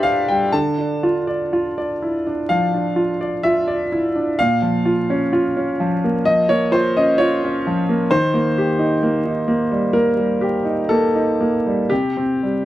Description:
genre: neoclassical minimalist piano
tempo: 63 BPM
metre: 4/4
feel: uneven beats, rubato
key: unclear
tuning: A4 = 442 Hz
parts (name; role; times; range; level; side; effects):
- clear concert grand piano; solo; 0.0-12.7 s; Bb2 to A5; -16 LUFS; equal; none
room: light reverb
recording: dry, close 1970s-style studio recording, vinyl crackle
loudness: -16 LUFS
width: side -14 dB against mid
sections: 0.0-12.7 A section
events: none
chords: 0.0 Csus2; 0.5 Dmadd9; 4.4 Bbm; 8.1 Eb; 11.9 C5

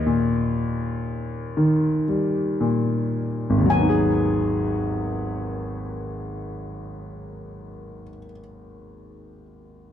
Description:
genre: pop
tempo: 54-61 BPM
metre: 4/4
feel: straight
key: G# minor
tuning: A4 = 439 Hz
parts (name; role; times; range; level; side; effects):
- steel pan; melody; 0.0-8.2 s; D#5 to G#5; -29 LUFS; left 3 dB; digital delay
- warm concert grand piano; accompaniment; 0.0-9.9 s; G#1 to G#4; -22 LUFS; equal; none
room: light reverb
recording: dark, warm production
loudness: -21 LUFS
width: side -10 dB against mid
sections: 0.0-3.7 A section; 3.7-8.1 B section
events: slowing down 0.0-3.7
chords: 0.0 D#; 3.7 G#m7

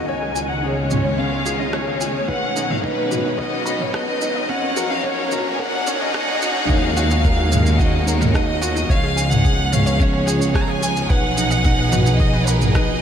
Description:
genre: piano and strings electronica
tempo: 109 BPM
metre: 4/4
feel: straight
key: Eb minor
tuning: A4 = 437 Hz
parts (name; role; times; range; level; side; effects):
- warm chamber violin section; melody; 0.0-13.0 s; Bb4 to Bb5; -23 LUFS; left 1 dB; low-pass filter, ping-pong delay
- clear studio string section; sustained chords; 0.0-13.0 s; Eb3 to Ab4; -26 LUFS; equal; none
- bright upright piano; riff; 0.0-13.0 s; Db4 to B5; -26 LUFS; right 1 dB; ping-pong delay
- clear chamber double bass section; bass; 0.0-13.0 s; B1 to Gb2; -23 LUFS; equal; tube saturation, sidechain pumping
- riser; sound effects; 0.0-6.7 s; none; -32 LUFS; right 1 dB; none
- analog pluck; arpeggios; 0.1-12.8 s; Db4 to D#5; -30 LUFS; left 1 dB; chorus, sidechain pumping, ping-pong delay
- deep house drum kit; drums; 0.4-12.9 s; rim click, shaker, toms; -26 LUFS; right 1 dB; none
- electronic kick drum; drums; 2.3-12.9 s; none; -19 LUFS; equal; none
room: wet huge ambient reverb, RT60 8.0 s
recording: dreamy mix soaked in reverb, high-pass filter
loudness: -16 LUFS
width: side -8 dB against mid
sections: 0.0-6.7 A section; 6.7-13.0 B section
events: build-up 0.0-6.7; riser 0.0-6.7; filter sweep on synth arpeggio sound 0.0-6.7; filter sweep 0.0-6.7; drop 6.7-13.0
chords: 0.1 Db; 2.3 B; 4.5 Gb; 6.7 Ebmadd9; 8.9 Db; 11.1 B

